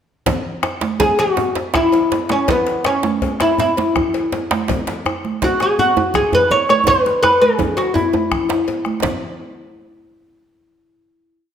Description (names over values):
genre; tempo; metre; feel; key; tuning
west african traditional, West African drum ensemble; 110 BPM (dotted quarters); 12/8; straight; E major pentatonic; A4 = 439 Hz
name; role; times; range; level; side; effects
bombo; percussion; 0.3-9.2 s; none; -25 LUFS; left 3 dB; none
congas; percussion; 0.3-9.2 s; none; -26 LUFS; right 6 dB; none
cowbell; percussion; 0.3-9.2 s; none; -28 LUFS; left 4 dB; none
djembe; percussion; 0.3-9.2 s; none; -29 LUFS; left 5 dB; none
djembe; percussion; 0.3-9.2 s; none; -24 LUFS; right 4 dB; none
oud; melody; 1.0-8.6 s; B3 to C#5; -15 LUFS; equal; none
room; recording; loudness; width
wet recital hall reverb, RT60 1.5 s; none; -14 LUFS; side -8 dB against mid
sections
0.3-9.0 A section; 9.0-11.2 final hit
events
drum fill 6.9-9.0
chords
none